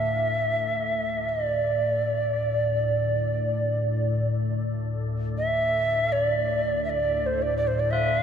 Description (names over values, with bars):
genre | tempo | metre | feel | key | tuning
world meditative, free-time meditation music | free time | none | none | unclear | A4 = 441 Hz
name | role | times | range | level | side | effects
breathy reedy Native American-style cedar flute | melody | 0.0-8.2 s | C5 to E5 | -24 LUFS | right 1 dB | tape echo
soft additive organ-like pad | drone | 0.0-8.2 s | D2 to A2 | -28 LUFS | left 2 dB | ensemble chorus, built-in reverb
tubular bells | texture | 7.9-8.2 s | F4 | -29 LUFS | left 2 dB | none
room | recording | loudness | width
wet huge ambient reverb, RT60 4.7 s | none | -23 LUFS | side -8 dB against mid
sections
0.0-8.2 A section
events
none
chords
none